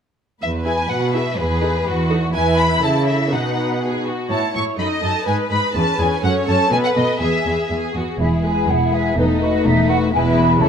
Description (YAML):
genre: quick classical-period movement for symphony orchestra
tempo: 124 BPM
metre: 2/4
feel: straight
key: E major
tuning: A4 = 440 Hz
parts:
  - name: warm studio violin section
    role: melody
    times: 0.4-10.7 s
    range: G#4 to C#6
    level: -23 LUFS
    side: left 2 dB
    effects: none
  - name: rich studio violin section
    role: second line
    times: 0.4-10.7 s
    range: D#4 to D#5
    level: -25 LUFS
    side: left 2 dB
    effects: none
  - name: warm studio cello section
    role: bass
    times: 0.4-10.7 s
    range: E2 to C#3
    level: -21 LUFS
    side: right 2 dB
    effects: none
  - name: dark studio viola section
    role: accompaniment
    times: 0.7-10.7 s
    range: E3 to C#5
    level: -23 LUFS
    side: equal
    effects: none
  - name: mellow hollow flute section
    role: second line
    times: 8.2-10.7 s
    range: B4 to B5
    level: -20 LUFS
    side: equal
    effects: none
  - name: dark French horn section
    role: sustained chords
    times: 8.2-10.7 s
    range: G#3 to E4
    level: -20 LUFS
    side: left 5 dB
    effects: none
  - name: warm studio double bass section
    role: bass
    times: 8.2-10.7 s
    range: E1 to C#2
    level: -21 LUFS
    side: right 3 dB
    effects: none
room: moderate scoring stage reverb, RT60 1.8 s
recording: close, detailed microphones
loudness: -16 LUFS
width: side -7 dB against mid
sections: 0.4-8.2 A section; 8.2-10.7 A section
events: none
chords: 0.4 E; 1.4 B7/E; 2.3 E; 2.8 A/C#; 3.3 B; 4.3 A; 4.8 D#dim; 5.3 G#m; 5.8 C#m/E; 6.2 F#m; 6.7 B7; 7.2 E; 9.2 B7/E; 10.1 E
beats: | 0.42 0.90 | 1.39 1.86 | 2.34 2.82 | 3.31 3.81 | 4.30 4.79 | 5.27 5.75 | 6.23 6.71 | 7.21 7.71 | 8.20 8.68 | 9.17 9.64 | 10.12 10.60